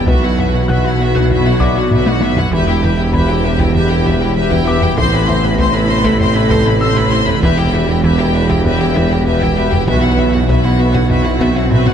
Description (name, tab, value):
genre	cinematic, hybrid orchestral and electronic film score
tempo	98 BPM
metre	4/4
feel	straight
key	E minor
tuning	A4 = 440 Hz
part	rich symphonic violin section	melody	0.0-11.9 s	E5 to C6	-21 LUFS	left 4 dB	none
part	clear symphonic violin section	second line	0.0-11.9 s	F#4 to C5	-25 LUFS	left 3 dB	none
part	rich symphonic viola section	accompaniment	0.0-11.9 s	C4 to G4	-24 LUFS	right 2 dB	none
part	dark trombone section	sustained chords	0.0-11.9 s	B2 to E3	-26 LUFS	right 3 dB	none
part	deep rumbling drone	sustained chords	0.0-11.9 s	C3 to B4	-25 LUFS	left 2 dB	none
part	mellow French horn section	sustained chords	0.0-11.9 s	B3 to A4	-23 LUFS	left 5 dB	none
part	dark detuned saw bass	bass	0.0-11.9 s	E1 to B1	-23 LUFS	equal	none
part	mellow tuba	bass	0.0-11.9 s	E1 to B1	-20 LUFS	right 4 dB	none
part	rich chamber double bass section	bass	0.0-11.9 s	E1 to B1	-20 LUFS	right 3 dB	none
part	rich studio cello section	bass	0.0-11.9 s	E2 to B2	-19 LUFS	right 1 dB	none
part	warm baby grand piano	texture	0.0-9.9 s	D5 to A6	-27 LUFS	left 4 dB	ping-pong delay
part	analog pluck	arpeggios	0.1-11.9 s	E3 to B4	-27 LUFS	right 3 dB	none
part	fat analog bass	riff	0.1-11.9 s	E2 to B3	-23 LUFS	left 2 dB	none
part	taiko ensemble	drums	0.1-11.9 s	none	-20 LUFS	equal	none
part	swell	sound effects	11.1-11.9 s	none	-24 LUFS	left 7 dB	none
room	moderate scoring stage reverb, RT60 1.8 s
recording	nothing above 10.8 kHz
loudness	-11 LUFS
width	side -8 dB against mid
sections	0.0-11.9 A section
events	drum fill 1.9-2.5, 11.7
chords	0.1 Bsus4; 2.5 Em; 5.0 Amadd9; 7.4 Em; 9.9 Bsus4